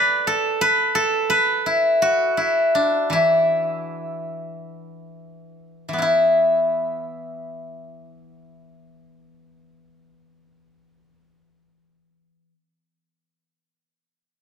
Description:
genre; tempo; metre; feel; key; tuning
chinese traditional, Chinese solo plucked strings; 35-59 BPM; 2/4; rubato; E shang mode; A4 = 440 Hz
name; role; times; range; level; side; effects
steel-string zither; solo; 0.0-12.5 s; E3 to D5; -18 LUFS; equal; none
room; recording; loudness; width
moderate recital hall reverb, RT60 1.6 s; close, detailed microphones; -17 LUFS; side -7 dB against mid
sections
0.0-6.0 A section; 6.0-12.5 B section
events
slowing down 1.0-6.0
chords
none

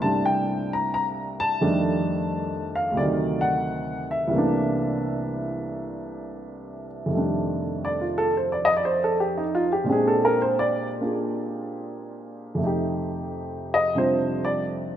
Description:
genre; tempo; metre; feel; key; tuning
solo jazz; 88 BPM; 4/4; swing 69% on 8ths, rubato; F mixolydian; A4 = 440 Hz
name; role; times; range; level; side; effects
warm upright piano; solo; 0.0-15.0 s; C2 to Bb5; -22 LUFS; equal; none
room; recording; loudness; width
moderate lush hall reverb, RT60 2.4 s; rough home demo mix; -22 LUFS; side -10 dB against mid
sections
0.0-7.1 A section; 7.1-15.0 B section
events
upright piano solo 7.1-15.0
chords
0.0 C13; 1.6 F13; 3.0 D7b9; 4.3 C13; 7.1 F13; 9.9 Bb13; 12.6 F13

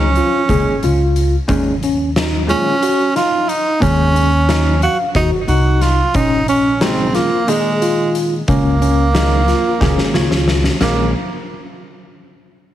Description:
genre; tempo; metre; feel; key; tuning
progressive instrumental, band music in an uneven meter; 180 BPM (eighths); 7/8; straight; Bb minor; A4 = 441 Hz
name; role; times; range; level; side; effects
breathy tenor saxophone; melody; 0.0-11.1 s; Ab3 to Gb4; -17 LUFS; right 3 dB; tape echo
vintage hollow-body jazz guitar; accompaniment; 0.0-11.1 s; Bb2 to Db5; -20 LUFS; equal; none
tine electric piano; arpeggios; 0.0-11.1 s; Bb3 to F5; -20 LUFS; left 1 dB; medium stereo tremolo
upright bass; bass; 0.0-11.1 s; Bb1 to Eb2; -17 LUFS; left 1 dB; none
oversized low-tuned drum kit; drums; 0.2-11.0 s; crash cymbal, hi-hat, kick drum, snare drum; -21 LUFS; left 1 dB; none
room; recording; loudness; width
moderate studio reverb, RT60 0.5 s; heavily compressed radio sound; -13 LUFS; side -12 dB against mid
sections
0.0-10.8 A section; 10.8-12.7 B section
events
drum fill 9.8-10.8; hollow-body jazz guitar fill 9.8-10.8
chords
0.0 Db6; 1.5 Eb7(no3); 6.2 Bbm7; 8.5 Db6; 10.8 Bbm7

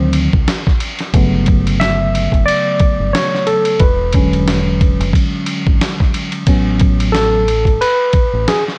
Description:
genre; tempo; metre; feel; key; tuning
hip hop, jazz-hop; 90 BPM; 4/4; swing 59% on 16ths; A major; A4 = 440 Hz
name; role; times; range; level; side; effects
tine electric piano; accompaniment; 0.0-8.6 s; C#3 to E5; -18 LUFS; equal; none
deep dub fingered electric bass; bass; 0.0-8.5 s; E1 to D2; -20 LUFS; equal; none
lo-fi sampler-style drum kit; drums; 0.1-8.7 s; hi-hat, kick drum, ride cymbal, snare drum; -18 LUFS; equal; none
room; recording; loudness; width
light reverb; none; -14 LUFS; mono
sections
0.0-8.8 A section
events
tine electric piano solo 0.0-8.8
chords
0.0 D7b9; 1.1 Gmaj9#11; 3.8 E13; 6.5 A69

